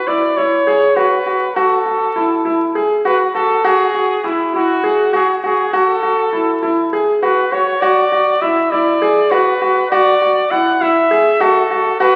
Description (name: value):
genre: contemporary instrumental, contemporary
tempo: 201 BPM (eighths)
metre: 7/8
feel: straight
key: unclear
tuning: A4 = 444 Hz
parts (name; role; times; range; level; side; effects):
- clear flugelhorn; melody; 0.0-12.2 s; E4 to F#5; -19 LUFS; equal; none
- clear baby grand piano; arpeggios; 0.1-12.2 s; E4 to G#4; -17 LUFS; equal; none
room: wet recital hall reverb, RT60 1.6 s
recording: very old 78 rpm record, vinyl crackle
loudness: -15 LUFS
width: mono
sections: 0.0-12.2 A section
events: none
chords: 0.0 Esus2